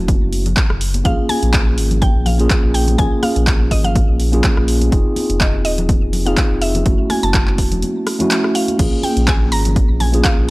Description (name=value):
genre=deep house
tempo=124 BPM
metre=4/4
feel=swing 55% on 16ths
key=unclear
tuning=A4 = 439 Hz
part: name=mallet-like synth pluck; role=melody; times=0.0-10.4 s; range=Eb5 to Bb5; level=-24 LUFS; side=equal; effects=chorus, tape echo
part: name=mellow tine electric piano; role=stabs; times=0.0-10.5 s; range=A3 to Ab4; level=-20 LUFS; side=right 1 dB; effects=sidechain pumping
part: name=round analog bass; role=bass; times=0.0-10.5 s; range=Eb1 to Bb1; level=-18 LUFS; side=equal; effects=sidechain pumping
part: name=electronic kick drum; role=drums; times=0.1-10.4 s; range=none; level=-16 LUFS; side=equal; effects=overdrive
part: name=punchy analog drum machine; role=drums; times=0.1-10.4 s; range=crash cymbal, handclaps, hi-hat, rim click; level=-22 LUFS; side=equal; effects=overdrive
part: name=congas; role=percussion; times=0.1-10.2 s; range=none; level=-27 LUFS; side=left 2 dB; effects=none
room=digital ambience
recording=dry, gritty hardware recording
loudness=-13 LUFS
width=side -21 dB against mid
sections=0.0-10.5 A section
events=none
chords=0.0 Gbm7; 1.1 Bbm7; 4.9 Fm7; 6.9 Gbm7; 8.8 Bbm7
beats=0.08 0.57 | 1.05 1.53 2.02 2.50 | 2.99 3.47 3.96 4.44 | 4.92 5.41 5.89 6.37 | 6.86 7.34 7.83 8.31 | 8.79 9.28 9.76 10.24